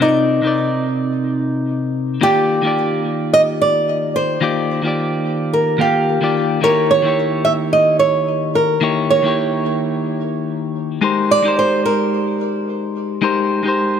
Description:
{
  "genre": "chillout",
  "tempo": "109 BPM",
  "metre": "4/4",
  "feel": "swing 55% on 16ths",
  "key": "Eb major",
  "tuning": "A4 = 440 Hz",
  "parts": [
    { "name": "flamenco guitar", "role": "melody", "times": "0.0-14.0 s", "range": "Eb4 to Fb5", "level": "-17 LUFS", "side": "right 2 dB", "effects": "ping-pong delay" },
    { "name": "clean electric guitar", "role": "accompaniment", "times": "0.0-14.0 s", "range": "C3 to F5", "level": "-18 LUFS", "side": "moving between left 6 dB and right 3 dB", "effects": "auto-pan, tape echo" }
  ],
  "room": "moderate plate reverb, RT60 3.5 s",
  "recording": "none",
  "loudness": "-15 LUFS",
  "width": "side -8 dB against mid",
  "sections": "0.0-14.0 A section",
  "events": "none",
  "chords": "0.0 Cm9; 2.2 Ebmaj9; 6.6 Eb7b9; 11.0 Abmaj9"
}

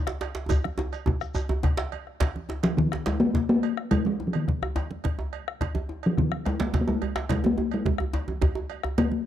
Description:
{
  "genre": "west african traditional, West African drum ensemble",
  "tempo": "141 BPM (dotted quarters)",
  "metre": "12/8",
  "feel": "straight",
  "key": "unclear",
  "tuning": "A4 = 435 Hz",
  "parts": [
    { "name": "bombo", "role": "percussion", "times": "0.1-9.1 s", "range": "none", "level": "-29 LUFS", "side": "left 2 dB", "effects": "none" },
    { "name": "djembe", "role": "percussion", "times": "0.1-9.0 s", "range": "none", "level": "-30 LUFS", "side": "right 2 dB", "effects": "none" },
    { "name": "cowbell", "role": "percussion", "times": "0.2-9.1 s", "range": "none", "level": "-39 LUFS", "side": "right 15 dB", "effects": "none" },
    { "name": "djembe", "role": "percussion", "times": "0.2-9.1 s", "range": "none", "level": "-32 LUFS", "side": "left 2 dB", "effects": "none" },
    { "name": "congas", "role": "percussion", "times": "0.5-9.2 s", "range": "none", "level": "-33 LUFS", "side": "right 4 dB", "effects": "none" },
    { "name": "shekere", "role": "percussion", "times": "0.5-1.5 s", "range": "none", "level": "-38 LUFS", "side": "left 2 dB", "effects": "none" },
    { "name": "talking drum", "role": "melody", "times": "2.6-9.3 s", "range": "Eb3 to Bb3", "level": "-24 LUFS", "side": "left 1 dB", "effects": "none" }
  ],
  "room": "studio ambience",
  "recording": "dry, close 1970s-style studio recording",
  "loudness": "-24 LUFS",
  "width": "side -11 dB against mid",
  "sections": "0.0-2.2 A section; 2.2-9.3 B section",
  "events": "drum fill 0.5-2.2",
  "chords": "none"
}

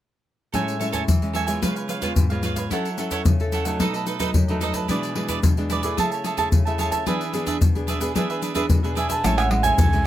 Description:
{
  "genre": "samba and choro",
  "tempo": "110 BPM",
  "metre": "4/4",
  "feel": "straight",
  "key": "A major",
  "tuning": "A4 = 439 Hz",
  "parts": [
    { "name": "cavaquinho", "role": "accompaniment", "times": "0.5-10.1 s", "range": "D4 to A5", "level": "-26 LUFS", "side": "right 6 dB", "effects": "none" },
    { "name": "nylon-string guitar", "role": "accompaniment", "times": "0.5-10.1 s", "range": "F#2 to A4", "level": "-27 LUFS", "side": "left 1 dB", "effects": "none" },
    { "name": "egg shaker, surdo, pandeiro and tamborim", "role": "percussion", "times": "0.5-10.1 s", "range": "none", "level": "-22 LUFS", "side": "left 2 dB", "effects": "none" },
    { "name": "baroque flute", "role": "melody", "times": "9.0-10.1 s", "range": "F#5 to A5", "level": "-24 LUFS", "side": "right 1 dB", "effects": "none" },
    { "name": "deep dub fingered electric bass", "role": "bass", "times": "9.2-10.1 s", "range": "A1 to C2", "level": "-22 LUFS", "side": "right 1 dB", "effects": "none" }
  ],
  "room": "light reverb",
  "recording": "close, detailed microphones",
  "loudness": "-20 LUFS",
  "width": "side -12 dB against mid",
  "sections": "0.5-9.2 A section",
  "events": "none",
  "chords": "0.5 Amaj7; 1.6 C#7; 2.7 F#m7; 3.8 B7; 4.9 E7/B; 6.0 Amaj7/C#; 7.1 E7; 9.2 Amaj7"
}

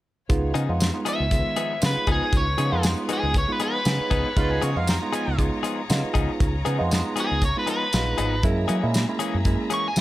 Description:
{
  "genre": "straight-eighth soul blues",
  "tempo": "118 BPM",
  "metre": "4/4",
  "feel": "swing 55% on 16ths",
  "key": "Db mixolydian",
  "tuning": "A4 = 440 Hz",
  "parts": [
    { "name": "barky tine electric piano", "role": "accompaniment", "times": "0.3-10.0 s", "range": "Eb3 to Ab4", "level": "-28 LUFS", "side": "right 3 dB", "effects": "phaser" },
    { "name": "clear studio string section", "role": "sustained chords", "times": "0.3-10.0 s", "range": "F4 to Bb5", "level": "-36 LUFS", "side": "left 3 dB", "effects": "none" },
    { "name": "fingered electric bass", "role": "bass", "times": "0.3-10.0 s", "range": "Ab1 to Gb3", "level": "-25 LUFS", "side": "equal", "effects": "none" },
    { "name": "warm soul drum kit", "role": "drums", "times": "0.3-10.0 s", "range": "hi-hat, kick drum, snare drum, tambourine", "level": "-25 LUFS", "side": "equal", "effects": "none" },
    { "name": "direct-recorded clean electric guitar", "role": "stabs", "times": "0.5-9.9 s", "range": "Fb3 to Ab4", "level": "-31 LUFS", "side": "left 7 dB", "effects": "spring reverb" },
    { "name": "crunchy overdriven guitar", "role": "melody", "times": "1.1-10.0 s", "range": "Ab4 to Db6", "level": "-25 LUFS", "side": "equal", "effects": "none" },
    { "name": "warm harmonica", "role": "second line", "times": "4.4-5.4 s", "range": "F4 to Bb5", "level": "-31 LUFS", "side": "right 4 dB", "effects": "overdrive" }
  ],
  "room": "light reverb",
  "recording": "none",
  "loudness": "-21 LUFS",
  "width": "side -15 dB against mid",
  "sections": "0.3-10.0 A section",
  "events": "none",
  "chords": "0.3 Db9; 8.4 Gb9"
}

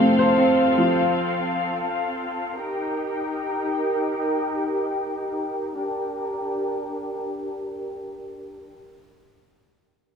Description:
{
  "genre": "hip hop",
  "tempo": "free time",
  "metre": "none",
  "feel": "none",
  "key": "G minor",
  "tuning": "A4 = 440 Hz",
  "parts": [
    { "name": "dark grand piano", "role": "accompaniment", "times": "0.0-1.8 s", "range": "C3 to C5", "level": "-19 LUFS", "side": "right 1 dB", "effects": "none" },
    { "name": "clear symphonic string section", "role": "sustained chords", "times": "0.0-8.7 s", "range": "C4 to G5", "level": "-24 LUFS", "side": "left 1 dB", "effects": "none" }
  ],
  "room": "light reverb, small room ambience",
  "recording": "rough home demo mix, low-pass filter",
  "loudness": "-22 LUFS",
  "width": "side -6 dB against mid",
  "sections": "0.0-5.7 A section; 5.7-8.9 B section",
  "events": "filter sweep 0.0-5.7",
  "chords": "0.0 F; 2.6 Eb; 5.7 Gm"
}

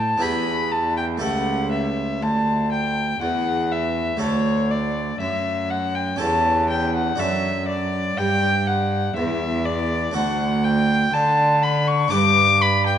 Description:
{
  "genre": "classical, baroque-style sonata movement with continuo",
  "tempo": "60 BPM",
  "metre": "3/4",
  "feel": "straight",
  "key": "D major",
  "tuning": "A4 = 442 Hz",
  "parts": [
    { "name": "dark violin", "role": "melody", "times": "0.0-13.0 s", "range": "C#5 to D6", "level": "-21 LUFS", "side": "left 2 dB", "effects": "none" },
    { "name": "harpsichord", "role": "accompaniment", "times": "0.0-13.0 s", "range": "C#2 to B4", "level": "-27 LUFS", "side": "right 2 dB", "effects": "none" },
    { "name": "rich cello", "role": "bass", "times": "0.0-13.0 s", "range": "C#2 to D3", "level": "-23 LUFS", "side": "right 2 dB", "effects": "none" }
  ],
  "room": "moderate concert hall reverb, RT60 2.0 s",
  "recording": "nothing above 10.7 kHz",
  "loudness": "-18 LUFS",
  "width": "side -9 dB against mid",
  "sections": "0.0-13.0 A section",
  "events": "none",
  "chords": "0.2 Em; 1.2 A7/C#; 4.2 D; 6.2 A7/E; 7.2 D/F#; 10.2 D; 12.1 G"
}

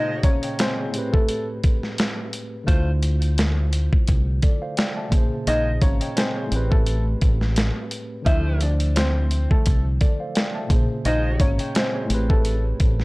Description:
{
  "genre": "hip hop, boom-bap hip-hop",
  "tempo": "86 BPM",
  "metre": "4/4",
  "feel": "swing 55% on 16ths",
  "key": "D minor",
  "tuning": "A4 = 440 Hz",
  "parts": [
    { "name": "warm upright piano", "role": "melody", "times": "0.0-12.6 s", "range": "A3 to E5", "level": "-27 LUFS", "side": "left 1 dB", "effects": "high-pass filter, low-pass filter, tape echo" },
    { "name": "tine electric piano", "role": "accompaniment", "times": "0.0-13.0 s", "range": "A2 to Bb5", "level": "-29 LUFS", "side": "equal", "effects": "medium stereo tremolo, cassette tape, high-pass filter, low-pass filter" },
    { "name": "warm saxophone section", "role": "stabs", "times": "0.0-11.5 s", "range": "F3 to C5", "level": "-34 LUFS", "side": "equal", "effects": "high-pass filter, low-pass filter, tape echo" },
    { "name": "dusty soul sampler-style drum kit", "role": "drums", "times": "0.2-13.0 s", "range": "hi-hat, kick drum, snare drum", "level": "-20 LUFS", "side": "equal", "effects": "none" },
    { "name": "deep dub fingered electric bass", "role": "bass", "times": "2.7-13.0 s", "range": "Ab1 to D2", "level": "-22 LUFS", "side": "equal", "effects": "transformer saturation" }
  ],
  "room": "little or no reverb",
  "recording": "dry, gritty hardware recording, cassette tape",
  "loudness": "-19 LUFS",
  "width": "side -24 dB against mid",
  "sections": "0.0-13.0 A section",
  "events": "break 0.0-2.7",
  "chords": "0.0 Bbm9; 0.9 Am9; 2.7 Dm9; 5.1 Bbm9; 6.5 Am9; 8.3 Dm9; 10.7 Bbm9; 12.1 Am9"
}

